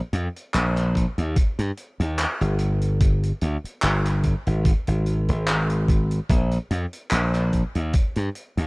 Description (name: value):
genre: vaporwave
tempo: 73 BPM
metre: 4/4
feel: swing 55% on 16ths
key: unclear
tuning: A4 = 445 Hz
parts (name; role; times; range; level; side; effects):
- glassy slap bass; bass; 0.1-8.7 s; G1 to G2; -21 LUFS; equal; none
- vintage drum kit; drums; 0.1-8.7 s; handclaps, hi-hat; -28 LUFS; equal; none
- electronic kick drum; drums; 1.0-8.1 s; none; -21 LUFS; equal; none
room: little or no reverb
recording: rough home demo mix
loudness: -20 LUFS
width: side -30 dB against mid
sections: 0.0-8.7 A section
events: none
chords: none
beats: 0.54 1.36 2.19 | 3.01 3.83 4.65 5.47 | 6.30 7.12 7.94